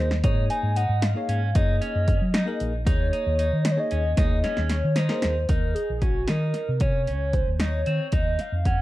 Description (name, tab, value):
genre	progressive instrumental, band music in an uneven meter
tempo	228 BPM (eighths)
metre	5/8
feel	straight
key	Eb dorian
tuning	A4 = 439 Hz
part	hollow square lead	melody	0.0-8.8 s	Gb4 to Ab5	-28 LUFS	equal	chorus, plate reverb
part	bell-like tine electric piano	accompaniment	0.0-5.4 s	Bb3 to Db5	-33 LUFS	left 2 dB	plate reverb
part	clean electric guitar	arpeggios	0.0-8.8 s	C4 to Eb4	-34 LUFS	equal	spring reverb, plate reverb, ping-pong delay
part	fingered electric bass	bass	0.0-8.8 s	Bb1 to Gb3	-24 LUFS	equal	none
part	punchy analog drum machine	drums	0.1-8.8 s	hi-hat, kick drum, snare drum	-25 LUFS	equal	none
room	light reverb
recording	dark, warm production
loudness	-21 LUFS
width	side -16 dB against mid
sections	0.0-5.5 A section; 5.5-8.8 B section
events	drum fill 0.0, 4.2-5.5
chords	0.2 Absus4; 1.6 Gb6; 2.9 Eb5; 8.1 Ebm9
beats	| 0.24 0.50 0.76 1.03 1.29 | 1.55 1.81 2.08 2.34 2.60 | 2.87 3.13 3.39 3.65 3.92 | 4.18 4.44 4.71 4.97 5.23 | 5.49 5.76 6.02 6.28 6.55 | 6.81 7.07 7.34 7.60 7.86 | 8.13 8.39 8.65